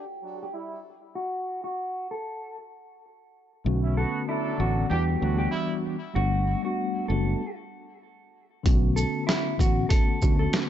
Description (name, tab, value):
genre	hip hop, boom-bap hip-hop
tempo	96 BPM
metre	4/4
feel	swing 56% on 16ths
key	B minor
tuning	A4 = 440 Hz
part	mellow electric guitar	melody	0.0-10.5 s	E4 to A4	-32 LUFS	equal	low-pass filter, ping-pong delay
part	warm trumpet section	stabs	0.0-5.8 s	F#3 to A4	-36 LUFS	right 2 dB	low-pass filter, ping-pong delay
part	mellow tine electric piano	accompaniment	3.6-10.7 s	D3 to F#4	-29 LUFS	left 1 dB	medium stereo tremolo, low-pass filter
part	fingered electric bass	bass	3.7-10.5 s	F#1 to E2	-25 LUFS	equal	none
part	boom bap sampler-style drum kit	drums	8.7-10.7 s	hi-hat, kick drum, shaker, snare drum	-23 LUFS	equal	none
room	little or no reverb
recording	nothing above 7.9 kHz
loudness	-24 LUFS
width	side -11 dB against mid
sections	0.0-8.7 A section; 8.7-10.7 B section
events	break 0.0-3.7; filter sweep 0.0-8.7; stop 7.4-8.7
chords	0.0 Em9/F#; 1.2 N.C.; 3.7 Bm7; 4.9 Em7; 6.2 Gmaj7; 7.4 N.C.; 8.7 Bm7